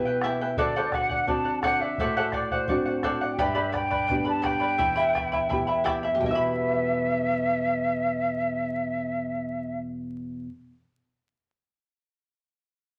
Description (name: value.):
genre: andean folk, Andean ensemble.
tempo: 85 BPM.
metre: 2/4.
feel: straight.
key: E minor.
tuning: A4 = 441 Hz.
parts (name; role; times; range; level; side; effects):
breathy mellow quena; melody; 0.0-9.8 s; B4 to A5; -30 LUFS; equal; none.
charango; accompaniment; 0.0-10.6 s; E4 to B5; -29 LUFS; equal; none.
nylon-string guitar; accompaniment; 0.0-10.5 s; E2 to B4; -32 LUFS; equal; none.
bombo; percussion; 0.2-6.5 s; none; -37 LUFS; equal; none.
room: moderate club reverb, RT60 0.7 s.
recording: vinyl crackle.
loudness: -26 LUFS.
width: mono.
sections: 0.0-6.2 A section; 6.2-9.0 B section.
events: none.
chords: 0.0 Em; 0.6 D7; 3.4 G; 4.8 Em.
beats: | 0.56 1.27 | 1.98 2.68 | 3.39 4.09 | 4.80 5.50 | 6.21 6.92 | 7.62 8.33.